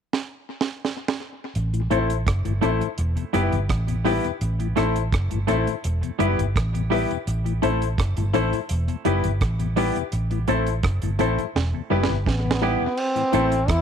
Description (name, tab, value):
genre	roots reggae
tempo	84 BPM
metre	4/4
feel	straight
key	A dorian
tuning	A4 = 442 Hz
part	deep reggae drum kit	drums	0.1-13.8 s	crash cymbal, hi-hat, kick drum, rim click, snare drum	-27 LUFS	right 3 dB	tape echo
part	vintage muted fingered electric bass	bass	1.6-13.8 s	E1 to E2	-24 LUFS	right 1 dB	none
part	mellow tonewheel organ	accompaniment	1.7-13.4 s	E2 to E4	-30 LUFS	left 10 dB	chorus vibrato, slow rotary speaker
part	semi-hollow electric guitar	accompaniment	1.9-13.5 s	G3 to A4	-28 LUFS	right 15 dB	tape echo
part	bright upright piano	stabs	1.9-13.6 s	E4 to C5	-26 LUFS	left 14 dB	none
part	clear trombone	melody	12.3-13.8 s	B3 to E4	-23 LUFS	right 1 dB	tape echo
room	little or no reverb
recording	1960s-style stereo with parts hard left and right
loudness	-21 LUFS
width	side -7 dB against mid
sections	0.0-1.6 A section; 1.6-13.0 B section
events	drum fill 0.1-1.6, 11.6-13.0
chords	0.0 N.C.; 1.6 Am; 3.0 Em; 4.4 Am; 5.8 Em; 7.3 Am; 8.7 Em; 10.1 Am; 11.6 Em; 13.0 Am